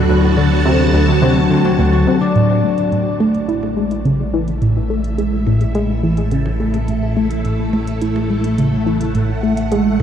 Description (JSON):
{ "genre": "ambient, sequencer-driven space music", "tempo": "106 BPM", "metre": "4/4", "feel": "straight", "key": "unclear", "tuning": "A4 = 440 Hz", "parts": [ { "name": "phased string machine", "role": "sustained chords", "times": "0.0-10.0 s", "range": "A2 to A5", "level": "-20 LUFS", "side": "equal", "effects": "ensemble chorus, phaser, shimmer reverb" }, { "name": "concert harp", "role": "arpeggios", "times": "0.0-5.0 s", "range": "F#3 to F#4", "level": "-20 LUFS", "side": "moving between left 5 dB and right 1 dB", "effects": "auto-pan, ping-pong delay, shimmer reverb" }, { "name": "fat analog bass", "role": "bass", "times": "0.0-10.0 s", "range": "A1 to D2", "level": "-21 LUFS", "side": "equal", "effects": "none" }, { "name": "tight sequenced synth", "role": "riff", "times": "0.1-10.0 s", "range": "D2 to E4", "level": "-17 LUFS", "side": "equal", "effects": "chorus, ping-pong delay" }, { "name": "electronic hi-hat and percussion blips", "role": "percussion", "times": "2.4-10.0 s", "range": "none", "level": "-40 LUFS", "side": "right 4 dB", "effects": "ping-pong delay" } ], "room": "wet huge ambient reverb, RT60 7.7 s", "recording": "dreamy mix soaked in reverb", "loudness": "-14 LUFS", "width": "side -9 dB against mid", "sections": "0.0-2.4 A section; 2.4-10.0 B section", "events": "fade-in on string machine 2.4-10.0; fade-in on drum 2.4-10.0; filter sweep on synth arpeggio sound 2.4-10.0", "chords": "0.0 D; 2.4 A5" }